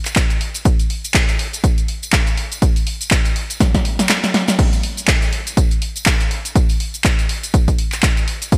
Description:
house; 122 BPM; 4/4; swing 57% on 16ths
punchy analog drum machine; drums; 0.1-8.6 s; cabasa, crash cymbal, handclaps, hi-hat, snare drum; -22 LUFS; equal; gated reverb
tambourine; percussion; 0.1-8.6 s; -35 LUFS; equal
electronic kick drum; drums; 0.2-8.6 s; -18 LUFS; equal
light reverb, digital ambience; bright 1980s-style digital production; -17 LUFS; mono
0.0-8.6 A section
drum fill 3.6-4.6; kick drops out 4.1-4.6

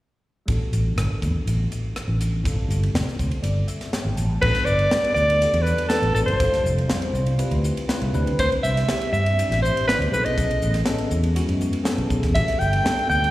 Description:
electric jazz fusion; 121 BPM; 4/4; straight; A dorian; A4 = 440 Hz
tine electric piano; accompaniment; 0.5-13.3 s; G3 to A5; -29 LUFS; left 1 dB; analog chorus, slapback echo
fretless electric bass; bass; 0.5-13.3 s; F1 to D3; -22 LUFS; equal
crisp fusion drum kit; drums; 0.5-13.3 s; crash cymbal, hi-hat, kick drum, ride cymbal, rim click, snare drum; -27 LUFS; equal
warm soprano saxophone; melody; 4.4-13.3 s; A4 to G5; -22 LUFS; equal; slapback echo, analog delay
light reverb, small room ambience; live gig heard through the venue's PA, recital hall reverb; -19 LUFS; side -16 dB against mid
0.5-4.4 A section; 4.4-13.3 B section
tine electric piano fill 2.9-4.4
0.5 A13sus4; 2.5 G13sus4; 4.2 N.C.; 4.4 A13sus4; 6.4 G13sus4; 8.1 D13sus4; 10.1 B13sus4; 12.3 A13sus4

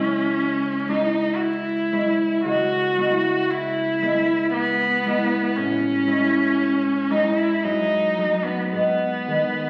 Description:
classical, romantic duo for cello and harp; 57 BPM; 3/4; rubato; C# minor; A4 = 439 Hz
clear cello; melody; 0.0-9.7 s; B3 to F#4; -24 LUFS; equal
concert harp; accompaniment; 0.0-9.7 s; C#2 to G#4; -25 LUFS; equal
wet recital hall reverb, RT60 1.5 s; very old 78 rpm record, vinyl crackle; -22 LUFS; mono
0.0-9.7 A section
0.0 C#m; 2.4 E/C#; 5.6 Amaj7; 7.6 D#dim/F#; 8.7 G#5

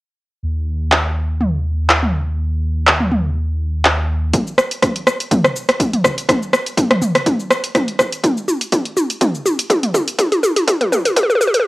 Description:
afro house; 123 BPM; 4/4; swing 54% on 16ths; A4 = 440 Hz
dark detuned saw bass; bass; 0.4-4.3 s; D#2; -18 LUFS; equal; tube saturation, sidechain pumping
deep house drum kit; drums; 0.9-11.7 s; cabasa, handclaps, hi-hat, rim click, toms; -14 LUFS; equal; overdrive, cassette tape
electronic kick drum; drums; 4.3-11.3 s; -21 LUFS; equal; overdrive, high-pass filter on kick, cassette tape
moderate studio reverb, RT60 0.6 s; home recording on cassette, high-pass filter; -14 LUFS; side -20 dB against mid
0.4-4.3 A section; 4.3-11.7 B section
build-up 4.3-11.7; drum fill 4.3-11.7

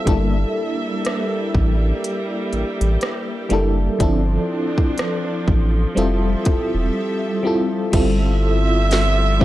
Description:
contemporary R&B; 61 BPM; 4/4; swing 58% on 16ths; G dorian; A4 = 440 Hz
FM electric piano with tremolo; accompaniment; 0.0-9.4 s; F3 to A4; -21 LUFS; left 1 dB; phaser
warm studio string section; sustained chords; 0.0-9.4 s; F3 to E5; -26 LUFS; right 2 dB
round analog bass; bass; 0.1-9.4 s; E1 to A1; -19 LUFS; equal
trap drum kit; drums; 0.1-9.4 s; crash cymbal, hi-hat, kick drum, rim click, snare drum; -21 LUFS; equal; vintage 12-bit sampler grit
digital ambience; dry, gritty hardware recording; -17 LUFS; side -15 dB against mid
0.0-7.9 A section; 7.9-9.4 B section
0.1 Gm69; 4.0 Dm9/G; 6.0 Fmaj9; 7.9 Fmaj9/G

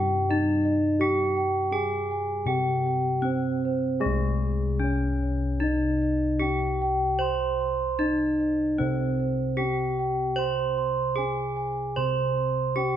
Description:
Javanese gamelan; 77 BPM; 4/4; uneven beats; C pelog; A4 = 438 Hz
gamelan-type bronze metallophone; melody; 0.0-13.0 s; Ab3-20c to C5; -26 LUFS; right 2 dB
gamelan-type bronze metallophone; arpeggios; 0.0-13.0 s; Ab4-20c to C6; -30 LUFS; right 1 dB
gamelan-type bossed gongs; bass; 0.0-13.0 s; C2 to C5; -29 LUFS; left 2 dB
moderate recital hall reverb, RT60 1.6 s; -23 LUFS; side -10 dB against mid
0.0-4.0 A section; 4.0-13.0 B section

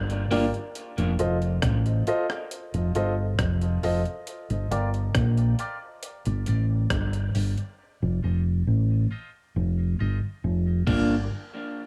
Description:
dub reggae; 68 BPM; 4/4; straight; A4 = 440 Hz
fingered electric bass; bass; 0.0-11.3 s; F1 to Bb1; -26 LUFS; equal
breakbeat sampler-style drum kit; drums; 0.1-11.1 s; crash cymbal, hi-hat, kick drum, rim click; -33 LUFS; equal
electric guitar at the edge of break-up; accompaniment; 0.3-0.5, 10.9-11.2 s; Bb3 to F4; -31 LUFS; equal; dub echo
warm grand piano; stabs; 0.3-11.2 s; F4 to Eb5; -34 LUFS; equal; high-pass filter, dub echo
light reverb, digital ambience; echo-heavy mix, small room ambience; -26 LUFS; mono
0.0-11.3 A section
filter sweep on grand piano 0.8-11.3; part muted 7.8-11.3
0.0 Gm7; 0.8 F7; 4.3 Gm7; 7.8 F7; 10.9 Gm7; 11.3 N.C.

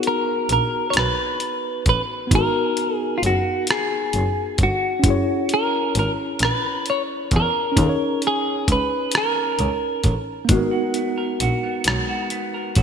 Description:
slow six-eight R&B; 44 BPM (dotted quarters); 6/8; straight; G# minor; A4 = 442 Hz
clean electric guitar; melody; 0.0-10.1 s; E#4 to C#5; -22 LUFS; equal; wide subtle chorus
tine electric piano; accompaniment; 0.0-12.8 s; A#3 to C#5; -26 LUFS; equal; overdrive, fast stereo tremolo
dusty soul sampler-style drum kit; drums; 0.0-12.8 s; hi-hat, kick drum, rim click; -22 LUFS; equal; gated reverb
bright double bass; bass; 0.5-12.8 s; F#1 to E2; -23 LUFS; equal
semi-hollow electric guitar; second line; 10.5-12.8 s; G#3 to A#4; -27 LUFS; right 3 dB; spring reverb, digital delay
moderate lush hall reverb, RT60 2.6 s; bright 1980s-style digital production; -19 LUFS; side -7 dB against mid
0.0-12.8 A section
0.0 G#m9; 5.0 F#7 (rootless); 7.8 D#7sus4; 10.5 G#m9

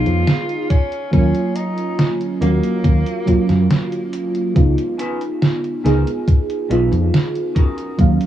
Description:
vaporwave; 70 BPM; 4/4; straight; A4 = 440 Hz
clear tenor saxophone; melody; 0.0-4.1 s; Bb3 to F4; -27 LUFS; equal; tape echo
mellow FM electric piano; accompaniment; 0.0-8.3 s; Gb3 to F5; -19 LUFS; right 1 dB; analog chorus, vintage 12-bit sampler grit, tape echo
fingered electric bass; bass; 0.0-8.2 s; Cb2 to Gb2; -16 LUFS; equal
detuned 8-bit digital drum machine; drums; 0.1-8.3 s; hi-hat, snare drum; -20 LUFS; right 1 dB
electronic kick drum; drums; 0.7-8.2 s; -14 LUFS; equal
semi-hollow electric guitar; riff; 5.0-8.2 s; Db4 to Cb5; -29 LUFS; left 2 dB; lush chorus, tape echo
little or no reverb; worn, warbling old tape, cassette tape, warbly pitch drift; -15 LUFS; side -11 dB against mid
0.0-4.6 A section; 4.6-8.3 B section
break 3.7-4.6
0.0 Db9 (rootless); 0.7 Ebm7; 4.6 Db9; 7.6 Ebm7

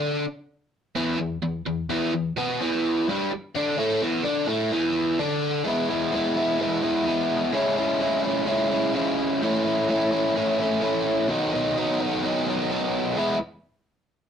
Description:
rock; 128 BPM; 4/4; straight; E major; A4 = 440 Hz
biting overdriven guitar; solo; 0.0-13.4 s; E2 to E4; -22 LUFS; equal
moderate small room reverb, RT60 0.6 s; rough rehearsal-room recording, warm saturation; -22 LUFS; side -8 dB against mid
0.0-5.7 A section; 5.7-13.2 B section; 13.2-14.3 C section
0.0 E5; 5.7 E; 7.5 C#m; 9.4 A; 11.3 B; 13.2 E

